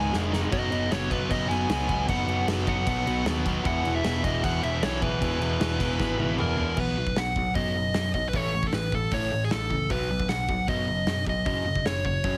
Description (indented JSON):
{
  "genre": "punk rock",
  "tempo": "154 BPM",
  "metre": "4/4",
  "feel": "straight",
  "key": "B major",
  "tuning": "A4 = 440 Hz",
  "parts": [
    { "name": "dark smooth lead guitar", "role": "melody", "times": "0.0-12.4 s", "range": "G#4 to G#5", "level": "-32 LUFS", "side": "equal", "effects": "overdrive" },
    { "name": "crunchy overdriven guitar", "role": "riff", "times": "0.0-12.4 s", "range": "E2 to B3", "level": "-33 LUFS", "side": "equal", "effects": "none" },
    { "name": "thick fuzz guitar", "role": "riff", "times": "0.0-6.8 s", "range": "G#2 to G#4", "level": "-37 LUFS", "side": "equal", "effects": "distortion" },
    { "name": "tight distorted guitar", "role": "riff", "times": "0.0-7.0 s", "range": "E2 to B3", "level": "-35 LUFS", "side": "equal", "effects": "distortion" },
    { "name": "overdriven picked electric bass", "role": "bass", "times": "0.0-12.4 s", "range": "E1 to F#2", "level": "-33 LUFS", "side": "equal", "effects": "none" },
    { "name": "loose indie drum kit", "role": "drums", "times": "0.1-12.3 s", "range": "crash cymbal, hi-hat, kick drum, snare drum, toms", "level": "-34 LUFS", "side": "equal", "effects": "none" }
  ],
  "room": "little or no reverb",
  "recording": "heavily compressed radio sound, multiband compression",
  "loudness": "-26 LUFS",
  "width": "mono",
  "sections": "0.0-6.8 A section; 6.8-12.4 B section",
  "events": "drum fill 0.1-0.5, 6.0-6.8",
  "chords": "0.0 G#m; 0.5 B/F#; 3.6 E; 6.8 B; 8.3 A; 9.9 B; 11.5 F#5",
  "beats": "0.13 | 0.52 0.91 1.30 1.70 | 2.09 2.48 2.87 3.26 | 3.65 4.04 4.43 4.82 | 5.21 5.60 5.99 6.38 | 6.77 7.17 7.56 7.95 | 8.34 8.73 9.12 9.51 | 9.90 10.29 10.68 11.07 | 11.47 11.86 12.25"
}